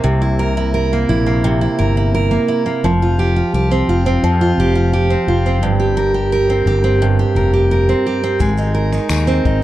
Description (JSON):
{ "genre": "acoustic pop", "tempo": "86 BPM", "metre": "4/4", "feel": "straight", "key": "unclear", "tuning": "A4 = 440 Hz", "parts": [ { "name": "picked steel-string acoustic guitar", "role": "accompaniment", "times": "0.0-9.6 s", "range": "G2 to Bb4", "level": "-15 LUFS", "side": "right 2 dB", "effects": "none" }, { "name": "fretless electric bass", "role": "bass", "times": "0.0-9.6 s", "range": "F1 to F2", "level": "-16 LUFS", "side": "left 1 dB", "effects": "none" }, { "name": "compact cocktail drum kit", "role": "drums", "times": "8.4-9.6 s", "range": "finger snaps, kick drum, shaker", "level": "-21 LUFS", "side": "left 3 dB", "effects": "none" }, { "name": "tambourine", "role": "percussion", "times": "9.1-9.3 s", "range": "none", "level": "-29 LUFS", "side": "left 12 dB", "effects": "none" } ], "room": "little or no reverb", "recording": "dark, warm production", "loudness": "-13 LUFS", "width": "side -14 dB against mid", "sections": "0.0-9.6 A section", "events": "none", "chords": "0.0 C7; 2.8 Fsus2; 5.6 C5/G; 8.4 Abadd9", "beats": "| 0.04 0.74 1.44 2.14 | 2.83 3.53 4.23 4.92 | 5.62 6.32 7.02 7.71 | 8.41 9.11" }